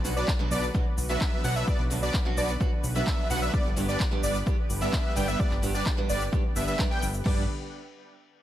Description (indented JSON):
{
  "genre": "EDM, festival progressive house",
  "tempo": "129 BPM",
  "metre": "4/4",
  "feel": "straight",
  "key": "G major",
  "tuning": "A4 = 439 Hz",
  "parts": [
    { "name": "picked steel-string acoustic guitar", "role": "accompaniment", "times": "0.0-7.4 s", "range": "G2 to G4", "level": "-35 LUFS", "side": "right 4 dB", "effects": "sidechain pumping, dub echo" },
    { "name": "lush unison pad", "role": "sustained chords", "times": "0.0-7.5 s", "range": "D3 to B4", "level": "-39 LUFS", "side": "equal", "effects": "chorus, sidechain pumping" },
    { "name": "fat analog bass", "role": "bass", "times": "0.0-7.5 s", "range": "G1 to B1", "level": "-30 LUFS", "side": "equal", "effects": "sidechain pumping" },
    { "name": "big-room dance drum kit", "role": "drums", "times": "0.0-7.4 s", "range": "crash cymbal, handclaps, hi-hat, shaker", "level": "-36 LUFS", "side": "equal", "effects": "overdrive" },
    { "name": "wide unison lead", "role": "arpeggios", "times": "0.2-7.4 s", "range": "D5 to G5", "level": "-34 LUFS", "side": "right 1 dB", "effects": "sidechain pumping, dub echo" },
    { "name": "supersaw chords", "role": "riff", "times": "0.2-7.4 s", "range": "F#3 to G5", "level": "-33 LUFS", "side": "equal", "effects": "wide subtle chorus, sidechain pumping, dub echo" },
    { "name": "electronic kick drum", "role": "drums", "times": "0.3-7.4 s", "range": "none", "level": "-28 LUFS", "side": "equal", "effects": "overdrive" }
  ],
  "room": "light reverb, digital ambience",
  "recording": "none",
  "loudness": "-24 LUFS",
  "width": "side -12 dB against mid",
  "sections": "0.0-7.3 A section; 7.3-8.4 B section",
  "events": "drop 0.0-7.3",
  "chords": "0.0 Bm; 3.5 G"
}